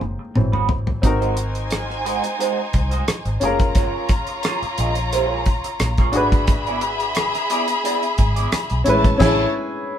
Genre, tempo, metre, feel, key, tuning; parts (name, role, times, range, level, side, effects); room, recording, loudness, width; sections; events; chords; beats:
lush 1970s-style soul; 88 BPM; 4/4; swing 54% on 16ths; A4 = 439 Hz
clear baby grand piano; accompaniment; 0.0-10.0 s; E3 to C5; -23 LUFS; left 2 dB
electric guitar through a small old amp; riff; 0.0-9.4 s; Ab3 to Eb5; -25 LUFS; right 4 dB; wah, vibrato effect
vintage muted fingered electric bass; bass; 0.0-9.4 s; Gb1 to C2; -24 LUFS; equal
damped 70s drum kit; drums; 0.0-9.4 s; crash cymbal, hi-hat, kick drum, rim click, snare drum, toms; -20 LUFS; equal
warm studio violin section; second line; 1.0-9.4 s; Eb4 to B5; -24 LUFS; left 2 dB
moderate small room reverb, RT60 0.5 s; band playing live in one room; -17 LUFS; side -10 dB against mid
0.0-1.0 A section; 1.0-10.0 B section
drum fill 0.0-1.0; grand piano solo 0.0-1.0; band accent 9.2-10.0
0.4 Ab7alt; 1.0 Ab7; 3.4 Gbmaj9; 6.1 E7/G#; 8.9 Amaj7
0.36 | 1.04 1.72 2.40 3.08 | 3.76 4.44 5.12 5.80 | 6.48 7.16 7.84 8.52 | 9.20 9.88